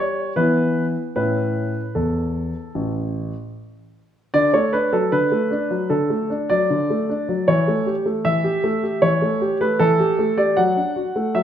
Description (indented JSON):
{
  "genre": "classical-period piano sonatina",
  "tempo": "77 BPM",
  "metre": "4/4",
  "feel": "straight",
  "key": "D major",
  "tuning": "A4 = 440 Hz",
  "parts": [
    { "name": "warm grand piano", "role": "solo", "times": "0.0-11.4 s", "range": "A1 to F#5", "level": "-18 LUFS", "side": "equal", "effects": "none" }
  ],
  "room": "wet recital hall reverb, RT60 1.6 s",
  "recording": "none",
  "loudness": "-18 LUFS",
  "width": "side -9 dB against mid",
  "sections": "0.0-4.3 A section; 4.3-11.4 B section",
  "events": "none",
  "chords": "0.0 Em/G; 1.2 A; 4.3 D; 7.5 A7/E; 10.6 D/F#"
}